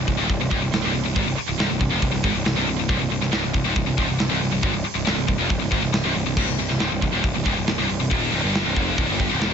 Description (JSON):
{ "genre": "heavy metal", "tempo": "138 BPM", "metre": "4/4", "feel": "straight", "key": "C phrygian", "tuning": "A4 = 436 Hz", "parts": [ { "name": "scooped high-gain guitar", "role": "riff", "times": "0.0-9.5 s", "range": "C2 to Ab2", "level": "-25 LUFS", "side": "left 13 dB", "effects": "distortion" }, { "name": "scooped high-gain guitar", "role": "riff", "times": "0.0-9.5 s", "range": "C2 to Ab2", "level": "-26 LUFS", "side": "right 12 dB", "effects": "distortion" }, { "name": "fuzz picked electric bass", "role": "bass", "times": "0.0-9.5 s", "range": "C1 to Ab1", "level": "-26 LUFS", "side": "equal", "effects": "overdrive" }, { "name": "tight metal drum kit", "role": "drums", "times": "0.1-9.5 s", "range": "crash cymbal, hi-hat, kick drum, snare drum", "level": "-25 LUFS", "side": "equal", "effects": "none" } ], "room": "studio reverb", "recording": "nothing above 7.9 kHz", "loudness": "-19 LUFS", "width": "side -7 dB against mid", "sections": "0.0-9.5 A section", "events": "none", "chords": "0.0 Cm" }